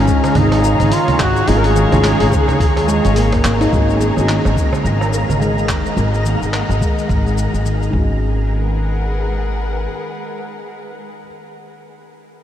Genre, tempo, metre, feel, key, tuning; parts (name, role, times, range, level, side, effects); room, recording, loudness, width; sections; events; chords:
organic downtempo; 107 BPM; 4/4; swing 59% on 16ths; G# dorian; A4 = 440 Hz
warm duduk; melody; 0.0-3.2 s; C#4 to A#4; -20 LUFS; left 1 dB; tape echo
felt-muted upright piano; accompaniment; 0.0-12.4 s; D#3 to F#4; -24 LUFS; right 1 dB; sidechain pumping, tape echo
muted studio string section; sustained chords; 0.0-11.2 s; G#3 to A#5; -24 LUFS; left 2 dB; sidechain pumping
upright bass; bass; 0.0-9.9 s; F#1 to D#2; -18 LUFS; equal
handpan; arpeggios; 0.1-8.5 s; D#3 to D#4; -21 LUFS; equal; low-pass filter, tape echo
dusty soul sampler-style drum kit; drums; 0.1-7.9 s; cabasa, congas, handclaps, hi-hat; -24 LUFS; right 1 dB
electronic kick drum; drums; 0.1-8.1 s; -18 LUFS; equal
darbuka; percussion; 0.2-5.4 s; -27 LUFS; right 4 dB
twinkling granular texture; texture; 4.1-8.2 s; A#3 to A#5; -28 LUFS; equal; built-in reverb, ensemble chorus
wet huge ambient reverb, RT60 7.6 s; dreamy mix soaked in reverb; -13 LUFS; side -10 dB against mid
0.0-3.7 A section; 3.7-8.2 B section; 8.2-10.5 C section
filter sweep on handpan 3.7-8.2
0.0 A#m7/G#; 3.7 G#5; 8.2 G#m7